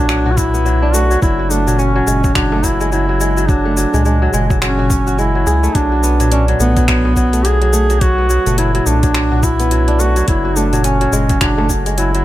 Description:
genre	organic downtempo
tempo	106 BPM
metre	4/4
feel	swing 59% on 16ths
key	F# minor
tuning	A4 = 441 Hz
part	warm duduk	melody	0.0-12.2 s	B3 to G#4	-17 LUFS	right 1 dB	digital delay
part	kora	arpeggios	0.0-12.2 s	F#3 to G#4	-19 LUFS	equal	low-pass filter, ping-pong delay
part	round analog bass	bass	0.0-12.2 s	F#1 to C#2	-16 LUFS	equal	sidechain pumping
part	deep house drum kit	drums	0.1-12.2 s	finger snaps, hi-hat, shaker	-22 LUFS	left 2 dB	none
part	darbuka	percussion	0.3-11.7 s	none	-24 LUFS	left 2 dB	none
part	electronic kick drum	drums	0.4-11.8 s	none	-16 LUFS	equal	none
room	light reverb, small room ambience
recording	none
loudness	-12 LUFS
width	side -14 dB against mid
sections	0.0-12.2 A section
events	none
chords	0.0 Bm7; 1.2 F#madd9; 5.8 Bm7; 10.3 F#madd9

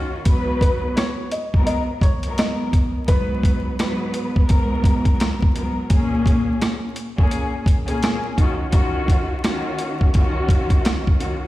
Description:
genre	hip hop, boom-bap hip-hop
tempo	85 BPM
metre	4/4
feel	swing 61% on 16ths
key	G# dorian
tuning	A4 = 440 Hz
part	warm studio string section	accompaniment	0.0-11.5 s	G#2 to B4	-23 LUFS	equal	cassette tape, high-pass filter, low-pass filter
part	boom bap sampler-style drum kit	drums	0.3-11.4 s	hi-hat, kick drum, rim click, snare drum	-18 LUFS	equal	none
part	dark upright piano	melody	0.6-4.7 s	B4 to D#5	-28 LUFS	left 1 dB	high-pass filter, low-pass filter, tape echo
room	small room ambience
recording	played on a big sound system in a bare room, stone room reverb, vinyl crackle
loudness	-17 LUFS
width	side -16 dB against mid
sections	0.0-11.5 A section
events	none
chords	0.3 G#m9; 5.9 A#m7; 8.4 D#m9

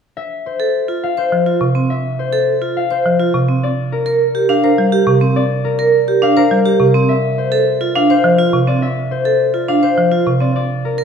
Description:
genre	classical, minimalist pattern music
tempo	104 BPM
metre	3/4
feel	straight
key	unclear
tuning	A4 = 438 Hz
part	concert harp	melody	0.2-11.0 s	Bb4 to F5	-16 LUFS	left 6 dB	none
part	vibraphone with hard mallets	arpeggios	0.6-11.0 s	C4 to C5	-17 LUFS	right 8 dB	none
part	folk marimba with hard mallets	accompaniment	1.3-10.5 s	C3 to G3	-18 LUFS	right 2 dB	none
room	moderate scoring stage reverb, RT60 2.2 s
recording	minimal, uncompressed stereo recording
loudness	-12 LUFS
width	side -7 dB against mid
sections	0.2-11.0 A section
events	none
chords	0.2 F; 3.6 Gm7; 7.1 F6

